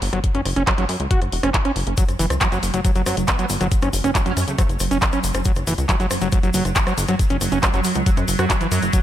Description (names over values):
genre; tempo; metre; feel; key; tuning
psychedelic trance; 138 BPM; 4/4; straight; unclear; A4 = 440 Hz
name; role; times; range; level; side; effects
plucky analog bass; bass; 0.0-8.9 s; E1 to F#2; -23 LUFS; equal; none
drum and bass drum kit; drums; 0.0-9.0 s; handclaps, hi-hat, rim click; -24 LUFS; equal; none
screaming distorted acid line; riff; 0.1-9.0 s; E3 to F#4; -24 LUFS; moving between left 3 dB and right 4 dB; distortion, chorus, auto-pan, sidechain pumping, digital delay
electronic kick drum; drums; 0.2-9.0 s; none; -19 LUFS; equal; none
pulsing gated texture; sustained chords; 2.0-9.0 s; F#3; -28 LUFS; right 4 dB; chorus, built-in reverb, sidechain pumping
tube shaker; percussion; 2.0-9.0 s; none; -32 LUFS; left 4 dB; none
metallic wobble bass; second line; 3.3-4.7 s; A3 to C#4; -33 LUFS; right 3 dB; analog chorus, sidechain pumping, high-pass filter, ping-pong delay
room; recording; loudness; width
light reverb; none; -17 LUFS; side -12 dB against mid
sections
0.0-9.0 A section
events
none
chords
0.0 F#5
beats
| 0.24 0.67 1.11 1.54 | 1.98 2.41 2.85 3.28 | 3.72 4.15 4.58 5.02 | 5.46 5.89 6.32 6.76 | 7.19 7.63 8.06 8.50 | 8.93